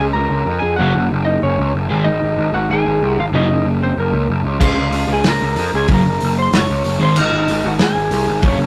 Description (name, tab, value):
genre	punk rock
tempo	188 BPM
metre	4/4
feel	straight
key	Ab mixolydian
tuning	A4 = 439 Hz
part	lightly driven lead guitar	melody	0.0-8.7 s	Bb3 to Db6	-21 LUFS	equal	none
part	fuzz picked electric bass	bass	0.0-8.7 s	Gb1 to F2	-20 LUFS	equal	overdrive
part	overdriven semi-hollow guitar	riff	0.8-8.6 s	Gb2 to Db4	-20 LUFS	equal	none
part	loose indie drum kit	drums	4.6-8.5 s	crash cymbal, hi-hat, kick drum, snare drum	-21 LUFS	equal	none
room	moderate studio reverb, RT60 0.6 s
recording	rough rehearsal-room recording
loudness	-16 LUFS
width	mono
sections	0.0-8.7 A section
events	half time 0.0-8.7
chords	0.0 Db; 0.8 Gb5; 1.9 Ab5; 3.3 Gb; 4.6 Db; 5.9 Gb; 7.0 Ab5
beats	0.15 0.47 | 0.79 1.11 1.43 1.75 | 2.06 2.38 2.70 3.02 | 3.34 3.66 3.98 4.29 | 4.61 4.93 5.25 5.57 | 5.88 6.20 6.52 6.84 | 7.16 7.48 7.79 8.11 | 8.43